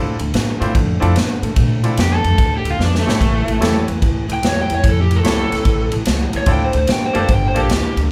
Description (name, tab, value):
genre	electric blues shuffle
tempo	147 BPM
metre	4/4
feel	swing 66% on 8ths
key	D minor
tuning	A4 = 440 Hz
part	bright upright piano	accompaniment	0.0-7.7 s	A3 to C5	-25 LUFS	equal	none
part	electric guitar through a small old amp	riff	0.0-8.1 s	G2 to B3	-27 LUFS	equal	none
part	upright bass	bass	0.0-8.1 s	F#1 to Bb2	-22 LUFS	equal	none
part	swinging big-band drum kit	drums	0.2-8.0 s	kick drum, ride cymbal, snare drum	-20 LUFS	equal	none
part	raw garage guitar	melody	2.0-8.0 s	A3 to G5	-23 LUFS	equal	overdrive
room	light reverb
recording	band playing live in one room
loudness	-16 LUFS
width	mono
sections	0.0-8.1 A section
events	overdriven electric guitar solo 0.0-8.1; drum fill 2.8-3.2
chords	0.0 Dm9; 3.2 A7; 6.5 Dm9; 7.3 Gm9